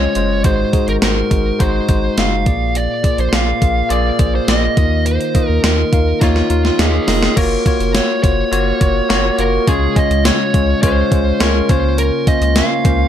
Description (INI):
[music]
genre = 1980s-style pop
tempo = 104 BPM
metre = 4/4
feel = straight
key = unclear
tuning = A4 = 440 Hz
[part]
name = fuzz lead guitar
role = melody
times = 0.0-13.1 s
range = F4 to F5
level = -19 LUFS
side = right 2 dB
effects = distortion
[part]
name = bell-like tine electric piano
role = accompaniment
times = 0.0-13.1 s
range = Ab2 to F5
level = -18 LUFS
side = left 3 dB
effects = none
[part]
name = round analog bass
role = bass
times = 0.0-13.1 s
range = F1 to Eb2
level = -18 LUFS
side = equal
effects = none
[part]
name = gated 80s digital drum machine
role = drums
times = 0.2-13.0 s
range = crash cymbal, hi-hat, kick drum, snare drum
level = -16 LUFS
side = equal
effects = gated reverb, gated reverb snare
[sound]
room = light reverb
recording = dark, warm production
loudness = -12 LUFS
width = side -10 dB against mid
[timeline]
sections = 0.0-7.4 A section; 7.4-13.1 B section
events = drum fill 6.2-7.4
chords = 0.4 Ab7; 2.5 Bb7; 4.8 Ebsus2; 7.4 Gbmaj7; 9.7 Db; 11.7 Bbm/Db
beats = | 0.45 1.02 1.60 2.18 | 2.75 3.33 3.91 4.48 | 5.06 5.64 6.21 6.79 | 7.37 7.95 8.52 9.10 | 9.68 10.25 10.83 11.41 | 11.98 12.56